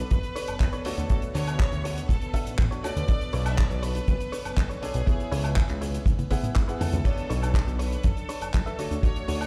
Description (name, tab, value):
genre	nu-disco, nu disco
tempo	121 BPM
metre	4/4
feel	straight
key	B dorian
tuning	A4 = 445 Hz
part	clear studio violin section	melody	0.0-9.5 s	G#4 to E5	-40 LUFS	equal	tape echo
part	bright grand piano	accompaniment	0.0-9.5 s	A3 to C#6	-39 LUFS	equal	sidechain pumping
part	string machine, full ensemble	sustained chords	0.0-9.5 s	B3 to C#6	-43 LUFS	equal	none
part	direct-recorded clean electric guitar	riff	0.0-9.5 s	D4 to E5	-39 LUFS	equal	lush chorus
part	fat analog bass	bass	0.0-9.5 s	D1 to D2	-31 LUFS	equal	none
part	damped 70s drum kit	drums	0.1-9.5 s	crash cymbal, handclaps, hi-hat, shaker, toms, woodblock	-36 LUFS	equal	studio reverb
part	kick drum	drums	0.1-9.1 s	none	-26 LUFS	equal	studio reverb
room	little or no reverb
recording	played on a big sound system in a bare room, stone room reverb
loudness	-26 LUFS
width	mono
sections	0.0-9.5 A section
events	drum fill 6.1-7.1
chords	0.0 Bm9; 0.9 Dmaj7; 3.1 Bm9; 5.1 C#m7; 7.1 Bm9; 8.8 Dmaj7